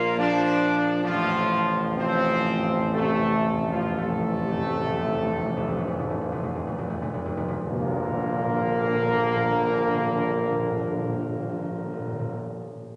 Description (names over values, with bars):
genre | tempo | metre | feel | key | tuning
classical, ceremonial fanfare | 43-70 BPM | 3/4 | straight | Bb major | A4 = 440 Hz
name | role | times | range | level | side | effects
warm trumpet section | melody | 0.0-12.4 s | F4 to F5 | -34 LUFS | equal | none
bright trombone section | sustained chords | 0.0-12.4 s | F3 to F4 | -29 LUFS | equal | none
warm French horn section | sustained chords | 0.0-12.4 s | A2 to Bb3 | -34 LUFS | equal | none
warm tuba | bass | 0.0-12.4 s | A1 to Bb1 | -32 LUFS | equal | none
timpani | percussion | 1.1-12.4 s | F2 to Bb2 | -34 LUFS | equal | none
tam-tam | percussion | 7.7-12.4 s | none | -40 LUFS | equal | none
room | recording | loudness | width
wet scoring stage reverb, RT60 1.9 s | nothing above 10.9 kHz | -25 LUFS | mono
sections
0.0-7.7 A section; 7.7-11.8 B section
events
slowing down 0.0-7.7; timpani fill 1.1-7.7; band accent 7.7-9.0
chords
0.0 Bb; 1.1 F/A; 7.7 Bb